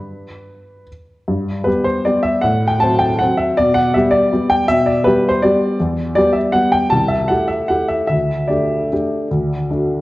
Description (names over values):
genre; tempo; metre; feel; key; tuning
classical, piano waltz; 140-167 BPM; 3/4; rubato; G major; A4 = 440 Hz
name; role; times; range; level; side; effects
warm upright piano; solo; 0.0-10.0 s; C2 to B5; -14 LUFS; equal; none
room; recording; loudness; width
wet recital hall reverb, RT60 1.6 s; worn, warbling old tape, cassette tape, warbly pitch drift; -14 LUFS; side -18 dB against mid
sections
0.0-1.3 A section; 1.3-10.0 B section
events
none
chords
0.0 N.C.; 1.3 G; 2.4 F#dim/A; 3.6 G/B; 5.8 Em; 6.9 Am7/C; 8.1 Dsus4; 9.3 D